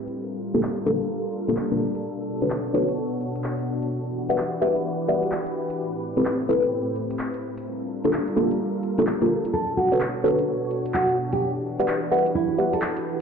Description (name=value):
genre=UK garage, two-step garage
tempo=128 BPM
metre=4/4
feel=swing 64% on 16ths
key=unclear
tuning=A4 = 441 Hz
part: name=soft string machine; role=sustained chords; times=0.0-13.2 s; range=A2 to C#5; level=-28 LUFS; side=equal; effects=ensemble chorus
part: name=garage drum kit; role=drums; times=0.1-13.0 s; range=handclaps, hi-hat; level=-34 LUFS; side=equal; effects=none
part: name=deep mellow chord stab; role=stabs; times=0.5-12.8 s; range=Bb3 to F#5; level=-23 LUFS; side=left 1 dB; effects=chorus, tape echo
part: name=nylon-string guitar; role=melody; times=9.5-12.8 s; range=E4 to A4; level=-25 LUFS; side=right 1 dB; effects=none
room=moderate plate reverb, RT60 2.1 s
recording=played on a big sound system in a bare room, large studio reverb, low-pass filter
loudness=-22 LUFS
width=side -6 dB against mid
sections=0.0-13.2 A section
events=filter sweep on synth stab 0.0-13.2; filter sweep 0.0-13.2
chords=0.0 Gm9; 2.0 Bm9; 3.9 Em9; 5.8 Am9; 7.4 Gm9; 9.5 Bm9; 11.4 Em9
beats=| 0.16 0.63 1.10 1.57 | 2.04 2.50 2.97 3.44 | 3.91 4.38 4.85 5.32 | 5.79 6.25 6.72 7.19 | 7.66 8.13 8.60 9.07 | 9.54 10.01 10.47 10.94 | 11.41 11.88 12.35 12.82